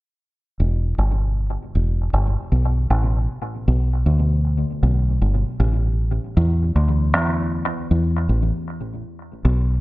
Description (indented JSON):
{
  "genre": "reggae",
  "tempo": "78 BPM",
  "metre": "4/4",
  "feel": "swing 60% on 16ths",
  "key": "E minor",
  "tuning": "A4 = 445 Hz",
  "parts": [
    { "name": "deep dub fingered electric bass", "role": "solo", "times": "0.6-9.8 s", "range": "E1 to E2", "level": "-18 LUFS", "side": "equal", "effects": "analog delay" }
  ],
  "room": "light reverb",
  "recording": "echo-heavy mix",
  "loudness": "-18 LUFS",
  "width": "side -19 dB against mid",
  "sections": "0.2-6.4 A section; 6.4-9.8 B section",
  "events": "none",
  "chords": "none",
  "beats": "| 0.20 0.97 1.74 2.51 | 3.28 4.04 4.82 5.58 | 6.35 7.12 7.89 8.66 | 9.43"
}